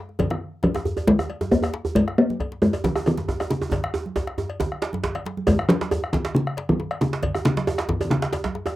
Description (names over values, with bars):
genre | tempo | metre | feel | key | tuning
west african traditional, West African drum ensemble | 136 BPM | 4/4 | straight | Db major pentatonic | A4 = 440 Hz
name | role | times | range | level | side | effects
talking drum | melody | 0.0-8.8 s | Db3 to Bb3 | -21 LUFS | left 1 dB | none
djembe | percussion | 0.1-8.7 s | none | -32 LUFS | left 2 dB | none
bombo | percussion | 0.2-8.8 s | none | -30 LUFS | left 1 dB | none
congas | percussion | 0.2-8.7 s | none | -32 LUFS | right 4 dB | none
cowbell | percussion | 0.2-8.8 s | none | -34 LUFS | left 5 dB | none
djembe | percussion | 0.8-8.8 s | none | -26 LUFS | right 3 dB | none
room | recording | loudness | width
moderate small room ambience, RT60 0.5 s | rough home demo mix | -21 LUFS | side -15 dB against mid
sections
0.0-5.5 A section; 5.5-8.8 B section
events
drum fill 3.7-5.5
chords
none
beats
| 0.20 0.64 1.08 1.52 | 1.96 2.40 2.84 3.28 | 3.72 4.16 4.60 5.04 | 5.48 5.92 6.36 6.80 | 7.24 7.67 8.11 8.55